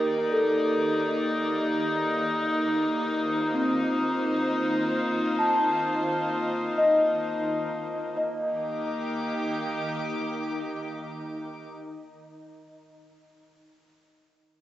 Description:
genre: ambient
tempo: 65 BPM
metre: 3/4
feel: straight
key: Eb lydian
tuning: A4 = 440 Hz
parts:
  - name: clear studio string section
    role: sustained chords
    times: 0.0-11.7 s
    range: Bb3 to D6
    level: -27 LUFS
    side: equal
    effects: none
  - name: large celesta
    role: arpeggios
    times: 0.0-13.4 s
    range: C4 to A5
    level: -27 LUFS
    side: left 1 dB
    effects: analog delay
  - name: organ-like drone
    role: drone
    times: 0.0-11.8 s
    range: Eb3 to Eb4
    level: -35 LUFS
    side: left 1 dB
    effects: ensemble chorus, built-in reverb
room: wet spring reverb, RT60 2.6 s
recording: home recording on cassette, nothing above 7.9 kHz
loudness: -24 LUFS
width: side -14 dB against mid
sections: 0.0-8.2 A section; 8.2-10.9 B section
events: none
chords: 0.0 Ebmaj7; 2.6 F7sus4; 8.2 Ebmaj7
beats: 0.78 1.70 | 2.62 3.55 4.47 | 5.39 6.32 7.24 | 8.16 9.08 10.01

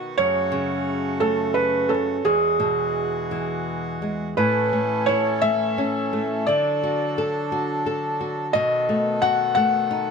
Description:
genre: children's music, lullaby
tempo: 58 BPM (dotted quarters)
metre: 6/8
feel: rubato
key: A major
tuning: A4 = 439 Hz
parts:
  - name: flamenco guitar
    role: accompaniment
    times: 0.0-10.1 s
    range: E2 to A4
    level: -26 LUFS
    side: left 2 dB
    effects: none
  - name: accordion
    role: sustained chords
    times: 0.0-10.1 s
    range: C#3 to A4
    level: -30 LUFS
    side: right 1 dB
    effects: none
  - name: felt-muted upright piano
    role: melody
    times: 0.2-10.1 s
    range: G#4 to F#5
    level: -21 LUFS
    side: right 1 dB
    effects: plate reverb
room: light reverb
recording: none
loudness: -20 LUFS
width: side -5 dB against mid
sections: 0.0-4.4 A section; 4.4-10.1 B section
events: none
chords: 0.2 F#m; 2.2 Eadd9; 4.4 A; 6.5 D; 8.5 B7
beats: | 0.18 1.20 | 2.25 3.31 | 4.37 5.43 | 6.48 7.52 | 8.55 9.57

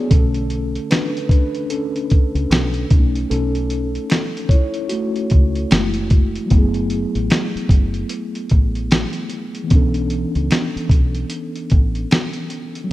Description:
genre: lo-fi hip hop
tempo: 75 BPM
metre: 4/4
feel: swing 61% on 16ths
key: unclear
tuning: A4 = 441 Hz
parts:
  - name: mellow tine electric piano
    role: accompaniment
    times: 0.0-12.9 s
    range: D3 to D5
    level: -22 LUFS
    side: left 1 dB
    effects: medium stereo tremolo, low-pass filter
  - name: deep dub fingered electric bass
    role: bass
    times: 0.1-12.0 s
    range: F#1 to C#2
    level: -22 LUFS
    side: equal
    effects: none
  - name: dusty soul sampler-style drum kit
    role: drums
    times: 0.1-12.9 s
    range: finger snaps, hi-hat, kick drum, snare drum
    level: -15 LUFS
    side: equal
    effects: none
  - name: finger snap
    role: percussion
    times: 0.9-12.3 s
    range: none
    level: barely audible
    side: none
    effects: none
room: light reverb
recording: rough home demo mix, cassette tape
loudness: -16 LUFS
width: side -16 dB against mid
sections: 0.0-6.5 A section; 6.5-12.9 B section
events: tine electric piano solo 0.0-6.5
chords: 0.1 Bm9; 2.9 B9; 5.7 F#m7; 6.5 F#m11; 9.7 Bm11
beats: | 0.11 0.91 1.71 2.51 | 3.31 4.11 4.91 5.71 | 6.51 7.31 8.11 8.91 | 9.71 10.51 11.31 12.11 | 12.91

